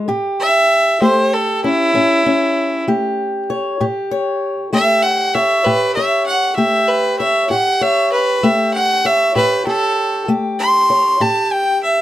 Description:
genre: acoustic country blues, solo or duo.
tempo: 65 BPM (dotted quarters).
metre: 12/8.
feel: straight.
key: A mixolydian.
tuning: A4 = 443 Hz.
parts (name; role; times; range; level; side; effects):
fingerpicked steel-string acoustic guitar; accompaniment; 0.0-12.0 s; A2 to C#5; -18 LUFS; left 2 dB; none.
clear fiddle; melody; 0.4-12.0 s; E4 to C6; -14 LUFS; right 1 dB; none.
room: light reverb.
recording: close, detailed microphones.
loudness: -13 LUFS.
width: side -13 dB against mid.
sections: 0.1-12.0 A section.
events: fiddle solo 0.1-12.0.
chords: 0.1 A7.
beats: | 0.07 1.00 1.93 2.86 | 3.79 4.72 5.65 6.57 | 7.50 8.43 9.35 10.28 | 11.21.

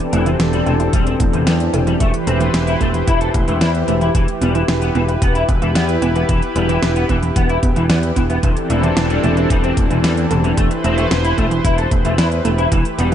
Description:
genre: synthwave.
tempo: 112 BPM.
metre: 4/4.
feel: straight.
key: unclear.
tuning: A4 = 441 Hz.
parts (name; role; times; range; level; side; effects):
lush unison pad; sustained chords; 0.0-13.1 s; E3 to C5; -20 LUFS; equal; chorus, sidechain pumping.
pop drum kit; drums; 0.0-13.1 s; hi-hat, snare drum; -23 LUFS; equal; none.
analog pluck; arpeggios; 0.1-13.1 s; E3 to B3; -24 LUFS; right 4 dB; chorus, tape echo.
electric guitar at the edge of break-up; riff; 0.1-13.1 s; C3 to A4; -22 LUFS; left 3 dB; ensemble chorus, tape echo.
picked electric bass; bass; 0.1-13.1 s; E1 to E2; -19 LUFS; equal; none.
electronic kick drum; drums; 0.9-12.8 s; none; -18 LUFS; equal; none.
room: light reverb.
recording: nothing above 10.3 kHz.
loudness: -14 LUFS.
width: side -10 dB against mid.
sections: 0.0-13.1 A section.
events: none.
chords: 0.0 C6/E; 2.0 Am7/E; 4.1 Em; 8.4 C6/E; 10.6 Am7/E.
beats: 0.40 0.93 1.47 | 2.00 2.54 3.08 3.61 | 4.15 4.68 5.22 5.75 | 6.29 6.83 7.36 7.90 | 8.43 8.97 9.50 10.04 | 10.57 11.11 11.65 12.18 | 12.72.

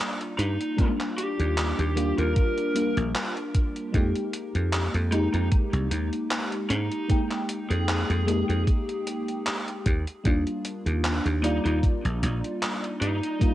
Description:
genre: vaporwave.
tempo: 76 BPM.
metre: 4/4.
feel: swing 55% on 16ths.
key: unclear.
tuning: A4 = 440 Hz.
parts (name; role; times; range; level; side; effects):
FM electric piano with soft pad layer; accompaniment; 0.0-13.5 s; G3 to G5; -29 LUFS; equal; analog chorus, cassette tape, tape echo.
gated 80s digital drum machine; drums; 0.0-13.5 s; handclaps, hi-hat; -31 LUFS; equal; gated reverb, overdrive, cassette tape.
lead guitar through a small cranked amp; melody; 0.4-13.5 s; Eb4 to Bb4; -32 LUFS; equal; overdrive, vintage 12-bit sampler grit, cassette tape, tape echo.
dry thumbed slap bass; bass; 0.4-13.2 s; Bb1 to Ab2; -26 LUFS; equal; none.
electronic kick drum; drums; 0.8-13.5 s; none; -23 LUFS; equal; cassette tape.
room: digital ambience.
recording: home recording on cassette.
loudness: -24 LUFS.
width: side -14 dB against mid.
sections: 0.0-13.5 A section.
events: none.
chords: 0.0 Ebmaj9; 3.9 Fm11; 9.9 Ebmaj9.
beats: | 0.78 1.57 2.36 3.15 | 3.94 4.73 5.52 6.31 | 7.10 7.89 8.68 9.47 | 10.26 11.04 11.84 12.62 | 13.41.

